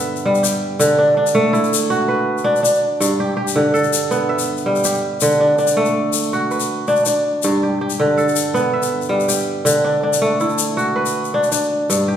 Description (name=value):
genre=west african traditional, West African string and xylophone music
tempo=108 BPM (dotted quarters)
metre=12/8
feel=straight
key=unclear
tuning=A4 = 442 Hz
part: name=kora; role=arpeggios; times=0.0-12.2 s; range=G2 to E5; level=-15 LUFS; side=equal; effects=none
part: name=egg shaker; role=percussion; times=0.2-12.0 s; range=none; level=-24 LUFS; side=left 8 dB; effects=none
room=wet recital hall reverb, RT60 1.7 s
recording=recorded in a church or concert hall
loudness=-15 LUFS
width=side -9 dB against mid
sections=0.0-12.2 A section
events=none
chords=0.0 G; 0.8 D; 3.0 G; 5.2 D; 7.4 G; 9.7 D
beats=0.24 | 0.80 1.35 1.90 2.46 | 3.01 3.56 4.11 4.66 | 5.22 5.77 6.32 6.88 | 7.43 7.99 8.54 9.10 | 9.66 10.22 10.78 11.34 | 11.90